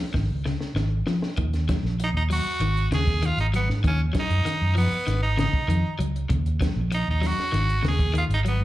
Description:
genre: afrobeat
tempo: 98 BPM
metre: 4/4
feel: straight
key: Eb minor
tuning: A4 = 440 Hz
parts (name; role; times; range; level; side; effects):
- electric guitar at the edge of break-up; arpeggios; 0.0-8.6 s; Db3 to Gb3; -29 LUFS; left 4 dB; slapback echo, tape echo
- fingered electric bass; bass; 0.1-8.6 s; Ab1 to Ab2; -24 LUFS; equal; none
- compact cocktail drum kit; drums; 0.1-8.6 s; hi-hat, kick drum, snare drum; -28 LUFS; equal; none
- raspy tenor saxophone; melody; 2.0-8.6 s; Cb4 to Ab4; -27 LUFS; right 2 dB; slapback echo
room: little or no reverb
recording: live gig heard through the venue's PA, club reverb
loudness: -21 LUFS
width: side -15 dB against mid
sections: 0.0-1.4 A section; 1.4-8.6 B section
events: drum fill 0.1-1.4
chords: 0.1 Ab5; 1.4 Ebm; 2.6 Ab5; 3.8 Ebmadd9; 5.1 Ab5; 6.3 Ebm7; 7.5 Ab5

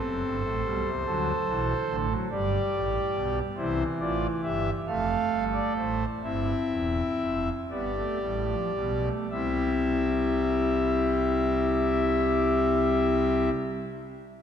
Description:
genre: classical, baroque-style 4-part fugue for pipe organ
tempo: 35-49 BPM (dotted quarters)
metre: 6/8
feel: straight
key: C major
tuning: A4 = 441 Hz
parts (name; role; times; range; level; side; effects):
- pipe organ, foundations; solo; 0.0-13.5 s; E1 to F5; -24 LUFS; equal; none
room: wet church reverb, RT60 3.2 s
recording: none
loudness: -24 LUFS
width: side -8 dB against mid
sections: 0.0-9.3 A section; 9.3-12.7 B section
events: slowing down 2.3-9.3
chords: 0.0 Am7; 1.1 D7; 2.3 G; 3.6 C; 4.9 F; 6.2 C; 7.7 G7; 9.3 C

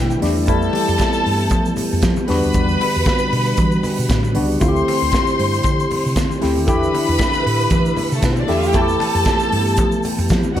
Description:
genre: disco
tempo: 116 BPM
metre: 4/4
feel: swing 56% on 16ths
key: unclear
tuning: A4 = 444 Hz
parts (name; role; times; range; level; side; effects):
- dark studio string section; second line; 0.0-10.6 s; A3 to C6; -22 LUFS; left 1 dB; slapback echo
- tine electric piano; accompaniment; 0.0-10.6 s; G3 to G5; -21 LUFS; left 1 dB; overdrive, phaser
- mellow tonewheel organ; sustained chords; 0.0-10.6 s; D3 to G4; -25 LUFS; right 1 dB; slow rotary speaker
- hollow-body short-scale fingered electric bass; bass; 0.0-10.6 s; C#2 to F3; -21 LUFS; equal; none
- congas; percussion; 0.1-10.6 s; none; -30 LUFS; left 5 dB; none
- egg shaker; percussion; 0.1-10.5 s; none; -38 LUFS; right 6 dB; none
- modern studio drum kit; drums; 0.2-10.6 s; hi-hat, kick drum, snare drum; -21 LUFS; right 1 dB; gated reverb
room: small room reverb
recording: none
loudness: -15 LUFS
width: side -11 dB against mid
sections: 0.0-10.6 A section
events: tine electric piano fill 0.0-0.5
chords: 0.5 Fmaj9#11; 2.3 Em9; 4.6 D7sus4; 6.7 C69/E (rootless); 8.7 Fmaj9#11

